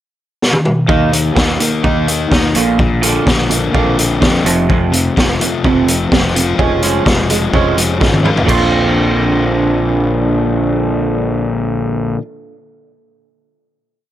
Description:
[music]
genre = indie rock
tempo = 126 BPM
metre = 4/4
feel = straight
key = Bb major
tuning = A4 = 439 Hz
[part]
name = raw garage drum kit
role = drums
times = 0.4-8.6 s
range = crash cymbal, hi-hat, kick drum, snare drum, toms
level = -15 LUFS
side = equal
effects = none
[part]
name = crunchy overdriven guitar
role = riff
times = 0.9-12.2 s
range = F2 to F4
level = -18 LUFS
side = left 5 dB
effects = none
[part]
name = electric guitar through a small old amp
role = riff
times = 0.9-12.2 s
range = F2 to F4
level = -17 LUFS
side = right 6 dB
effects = lush chorus, analog delay
[part]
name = fuzz fingered electric bass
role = bass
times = 0.9-12.2 s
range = F1 to F2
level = -18 LUFS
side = equal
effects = overdrive
[sound]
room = small room ambience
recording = none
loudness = -11 LUFS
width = side -12 dB against mid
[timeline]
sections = 0.0-0.9 pickup bar; 0.9-8.5 interlude; 8.5-12.2 final chord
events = drum fill 0.4-0.9, 8.0-8.5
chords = 0.0 N.C.; 0.9 Eb5; 2.5 Bbadd9; 4.5 F; 6.6 Db/F; 8.5 Bbadd9

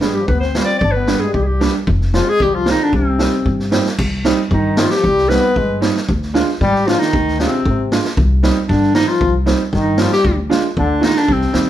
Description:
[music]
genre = klezmer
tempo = 114 BPM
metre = 2/4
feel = straight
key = C harmonic minor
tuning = A4 = 441 Hz
[part]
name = bright clarinet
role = melody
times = 0.0-11.7 s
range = C4 to D5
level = -17 LUFS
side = left 1 dB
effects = plate reverb
[part]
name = warm trombone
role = second line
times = 0.0-11.7 s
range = C3 to D4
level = -22 LUFS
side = left 4 dB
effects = none
[part]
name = clear upright piano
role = accompaniment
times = 0.0-11.7 s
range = G3 to F4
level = -19 LUFS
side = right 4 dB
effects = none
[part]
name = upright bass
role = bass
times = 0.0-11.7 s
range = F1 to Ab2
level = -19 LUFS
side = equal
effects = none
[part]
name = street-band drum kit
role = drums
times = 0.0-11.7 s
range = crash cymbal, kick drum, snare drum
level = -20 LUFS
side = equal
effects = none
[sound]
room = moderate studio reverb, RT60 0.7 s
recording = heard from further back in the room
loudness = -13 LUFS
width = side -12 dB against mid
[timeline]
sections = 0.0-4.0 A section; 4.0-11.7 B section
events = none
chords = 0.0 G; 1.9 Fm; 2.9 Cm; 6.1 Ddim; 8.2 Cm; 10.3 Ddim

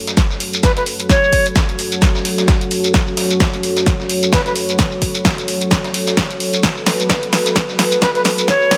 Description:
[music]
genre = bass house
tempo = 130 BPM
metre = 4/4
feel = swing 58% on 16ths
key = F# minor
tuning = A4 = 440 Hz
[part]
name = dark analog pad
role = sustained chords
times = 0.0-8.8 s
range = F#3 to C#5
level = -22 LUFS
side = equal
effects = chorus, sidechain pumping
[part]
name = dusty soul sampler-style drum kit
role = drums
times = 0.1-8.8 s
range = hi-hat, shaker, snare drum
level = -29 LUFS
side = equal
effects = overdrive, high-pass filter on snare, sidechain pumping on perc, high-pass filter on perc, sidechain pumping on hats, high-pass filter on hats, high-pass filter on room
[part]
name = house drum kit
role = drums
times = 0.1-8.8 s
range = hi-hat, snare drum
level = -20 LUFS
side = equal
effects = none
[part]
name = shekere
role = percussion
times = 0.1-8.7 s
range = none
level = -26 LUFS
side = equal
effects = none
[part]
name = electronic kick drum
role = drums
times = 0.2-8.8 s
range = none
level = -19 LUFS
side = equal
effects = none
[part]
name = breathy bright concert flute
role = melody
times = 0.6-1.5, 4.3-4.5, 8.0-8.8 s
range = B4 to C#5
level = -20 LUFS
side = equal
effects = delay
[sound]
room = light reverb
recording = high-pass filter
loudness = -16 LUFS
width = mono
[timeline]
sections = 0.0-8.8 A section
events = build-up 0.0-8.8; drum fill 0.0-8.8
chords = 0.0 F#m

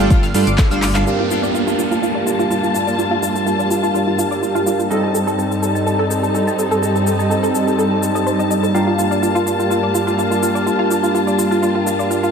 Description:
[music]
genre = progressive house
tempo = 125 BPM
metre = 4/4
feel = straight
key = G minor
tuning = A4 = 440 Hz
[part]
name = muted studio string section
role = sustained chords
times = 0.0-12.3 s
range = G2 to A5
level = -20 LUFS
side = left 1 dB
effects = sidechain pumping
[part]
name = analog pluck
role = arpeggios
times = 0.0-12.3 s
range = F4 to E6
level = -21 LUFS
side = right 1 dB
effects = analog chorus, vintage 12-bit sampler grit, sidechain pumping, ping-pong delay
[part]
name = chorused polysynth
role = stabs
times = 0.0-12.3 s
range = G3 to G5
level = -19 LUFS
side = right 1 dB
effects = vintage 12-bit sampler grit, sidechain pumping, ping-pong delay
[part]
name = dark detuned saw bass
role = bass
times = 0.0-1.0 s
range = G1 to G2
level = -19 LUFS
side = equal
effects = tube saturation, sidechain pumping
[part]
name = deep house drum kit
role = drums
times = 0.0-12.3 s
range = handclaps, hi-hat, shaker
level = -28 LUFS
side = left 3 dB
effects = overdrive, sidechain pumping on hats, sidechain pumping on perc
[part]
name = twinkling granular texture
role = texture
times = 0.0-1.1 s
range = F5 to F6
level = -34 LUFS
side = left 1 dB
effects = none
[part]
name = dusty soul sampler-style drum kit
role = drums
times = 0.1-1.1 s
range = hi-hat, snare drum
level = -35 LUFS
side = right 1 dB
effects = none
[part]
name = electronic kick drum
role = drums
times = 0.1-0.7 s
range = none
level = -14 LUFS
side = equal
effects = overdrive
[part]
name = downlifter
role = sound effects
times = 1.1-4.9 s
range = none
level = -26 LUFS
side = right 5 dB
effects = none
[sound]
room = moderate plate reverb, RT60 1.7 s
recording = dreamy mix soaked in reverb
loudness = -15 LUFS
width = side -6 dB against mid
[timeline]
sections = 0.0-1.1 A section; 1.1-12.3 B section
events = drum fill 0.8; filter sweep on analog polysynth 1.1-12.3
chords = 0.0 Dm/G; 1.1 Gm7; 4.9 Adim/G; 8.7 Gm7

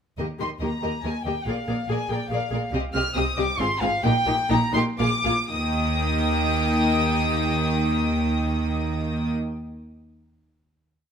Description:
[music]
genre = quick classical-period movement for string orchestra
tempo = 114-144 BPM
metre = 3/4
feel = rubato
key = Eb major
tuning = A4 = 441 Hz
[part]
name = rich studio violin section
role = second line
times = 0.2-9.3 s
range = G4 to G5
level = -31 LUFS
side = left 2 dB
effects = none
[part]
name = warm studio viola section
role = accompaniment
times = 0.2-9.3 s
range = Bb3 to Ab4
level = -27 LUFS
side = equal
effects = none
[part]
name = warm studio cello section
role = bass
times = 0.2-9.3 s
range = Ab2 to Eb3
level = -30 LUFS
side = right 2 dB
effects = none
[part]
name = warm studio double bass section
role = bass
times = 0.2-9.3 s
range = Ab1 to Eb2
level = -28 LUFS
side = right 2 dB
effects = none
[part]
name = warm studio violin section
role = melody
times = 0.4-9.3 s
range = F5 to F6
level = -27 LUFS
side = left 2 dB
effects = none
[sound]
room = moderate recital hall reverb, RT60 1.4 s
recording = close, detailed microphones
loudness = -21 LUFS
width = side -7 dB against mid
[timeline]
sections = 0.2-5.5 A section; 5.5-8.5 final chord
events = slowing down 2.1-5.5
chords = 0.2 Eb; 1.5 Bb7; 2.7 Cm; 3.6 Fm/Ab; 4.0 Eb/Bb; 5.0 Bb7; 5.5 Eb

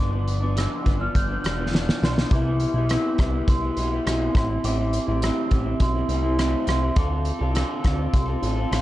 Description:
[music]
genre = indie pop, bedroom pop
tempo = 103 BPM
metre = 4/4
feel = straight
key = A minor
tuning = A4 = 436 Hz
[part]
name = glockenspiel with rubber mallets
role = melody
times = 0.0-8.8 s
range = C6 to G6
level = -32 LUFS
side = right 2 dB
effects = lush chorus, slapback echo
[part]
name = electric guitar through a small old amp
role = accompaniment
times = 0.0-8.8 s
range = G2 to A4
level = -26 LUFS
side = equal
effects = lush chorus, warbly pitch drift
[part]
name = fat analog bass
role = bass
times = 0.0-8.8 s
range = E1 to D2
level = -25 LUFS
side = equal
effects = none
[part]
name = loose indie drum kit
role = drums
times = 0.3-8.8 s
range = hi-hat, kick drum, rim click, snare drum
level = -24 LUFS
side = equal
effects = vintage 12-bit sampler grit
[sound]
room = studio ambience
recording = dark, warm production, faint mains hum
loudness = -20 LUFS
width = side -15 dB against mid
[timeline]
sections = 0.0-8.8 A section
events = drum fill 1.7-2.3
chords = 0.0 G7; 2.3 Cmaj7; 4.3 Am7; 7.0 Dm7

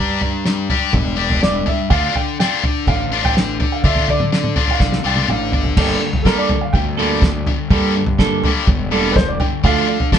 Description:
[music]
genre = indie rock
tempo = 124 BPM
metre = 4/4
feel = straight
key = G dorian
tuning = A4 = 440 Hz
[part]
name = warm upright piano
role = melody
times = 0.0-10.2 s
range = A4 to Bb5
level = -23 LUFS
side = right 3 dB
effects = none
[part]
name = high-gain distorted guitar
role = riff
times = 0.0-10.2 s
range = G2 to G4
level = -20 LUFS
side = left 7 dB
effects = distortion
[part]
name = fuzz fingered electric bass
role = bass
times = 0.0-9.8 s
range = E1 to D3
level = -24 LUFS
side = equal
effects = overdrive
[part]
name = cloth-damped thuddy drum kit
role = drums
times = 0.2-10.2 s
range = crash cymbal, kick drum, snare drum, toms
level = -17 LUFS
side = equal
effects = none
[part]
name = clean electric guitar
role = riff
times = 5.8-10.2 s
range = F3 to A4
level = -20 LUFS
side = right 6 dB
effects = none
[sound]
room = moderate small room reverb, RT60 0.5 s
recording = band playing live in one room, nothing above 11.0 kHz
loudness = -14 LUFS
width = side -9 dB against mid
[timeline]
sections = 0.0-5.8 A section; 5.8-10.2 B section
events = drum fill 4.8-5.8; upright piano solo 5.8-10.2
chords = 0.0 Gm; 1.9 Dm; 5.8 Gmadd9; 9.6 Dm

